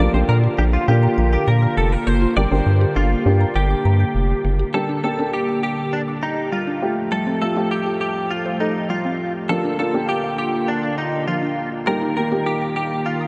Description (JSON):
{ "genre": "pop", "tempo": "101 BPM", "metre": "4/4", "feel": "straight", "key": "unclear", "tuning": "A4 = 440 Hz", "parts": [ { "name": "direct-recorded clean electric guitar", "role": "melody", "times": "0.0-13.3 s", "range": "D4 to D5", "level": "-26 LUFS", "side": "equal", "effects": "analog chorus, analog delay" }, { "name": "dark baby grand piano", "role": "accompaniment", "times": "0.0-13.2 s", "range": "A3 to A4", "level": "-29 LUFS", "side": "equal", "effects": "none" }, { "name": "chorused pulse-width pad", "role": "sustained chords", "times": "0.0-13.3 s", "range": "D3 to G4", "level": "-27 LUFS", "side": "equal", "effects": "none" }, { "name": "mallet-like synth pluck", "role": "arpeggios", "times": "0.0-13.3 s", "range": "F3 to G6", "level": "-31 LUFS", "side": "equal", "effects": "chorus, analog delay" }, { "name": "round analog bass", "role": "bass", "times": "0.0-4.6 s", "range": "F1 to Bb2", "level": "-19 LUFS", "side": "equal", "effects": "none" } ], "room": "moderate huge ambient reverb, RT60 9.0 s", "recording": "dreamy mix soaked in reverb", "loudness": "-20 LUFS", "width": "mono", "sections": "0.0-4.7 A section; 4.7-13.3 B section", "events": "none", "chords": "0.0 Bb; 4.7 Gm; 6.8 Fadd9; 9.5 Bb; 11.9 Eb" }